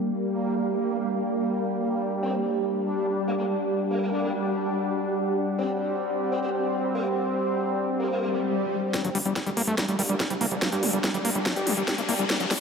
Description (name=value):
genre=psychedelic trance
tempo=143 BPM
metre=4/4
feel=straight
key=G harmonic minor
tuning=A4 = 439 Hz
part: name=bubbling stepped-filter texture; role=sustained chords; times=0.0-12.6 s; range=G3 to D4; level=-27 LUFS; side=left 1 dB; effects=chorus, built-in reverb, sidechain pumping
part: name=deep dark ambient pad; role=texture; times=0.0-12.6 s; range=G4 to G5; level=-31 LUFS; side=right 3 dB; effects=chorus, built-in reverb, sidechain pumping
part: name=formant-sweep wobble bass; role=second line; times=2.2-12.4 s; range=Bb3 to C4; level=-36 LUFS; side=left 2 dB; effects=wide subtle chorus, sidechain pumping, high-pass filter, analog delay
part: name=swell and riser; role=sound effects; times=8.2-12.6 s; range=none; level=-34 LUFS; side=left 4 dB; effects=none
part: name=overdriven acid bass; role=riff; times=8.9-12.5 s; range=F#3 to G4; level=-27 LUFS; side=moving between left 6 dB and right 5 dB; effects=distortion, auto-pan, sidechain pumping, diffuse ambient delay
part: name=drum and bass drum kit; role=drums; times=8.9-12.6 s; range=hi-hat, snare drum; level=-28 LUFS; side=equal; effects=none
part: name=electronic kick drum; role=drums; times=8.9-12.4 s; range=none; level=-31 LUFS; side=equal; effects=high-pass filter on kick
part: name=fat analog bass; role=bass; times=9.0-12.6 s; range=D1 to G2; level=-34 LUFS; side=equal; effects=tube saturation, high-pass filter
room=wet huge ambient reverb, RT60 4.7 s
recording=dreamy mix soaked in reverb, high-pass filter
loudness=-24 LUFS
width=side -5 dB against mid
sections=0.0-8.9 A section; 8.9-12.6 B section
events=filter sweep on synth texture 0.0-8.9, 8.9-12.6; swell 8.2-8.9; build-up 8.9-12.6; drum fill 8.9-12.6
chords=0.0 G5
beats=0.13 | 0.55 0.97 1.39 1.81 | 2.23 2.65 3.07 3.49 | 3.90 4.33 4.75 5.16 | 5.58 6.00 6.42 6.84 | 7.26 7.68 8.10 8.52 | 8.94 9.36 9.78 10.20 | 10.62 11.04 11.46 11.88 | 12.30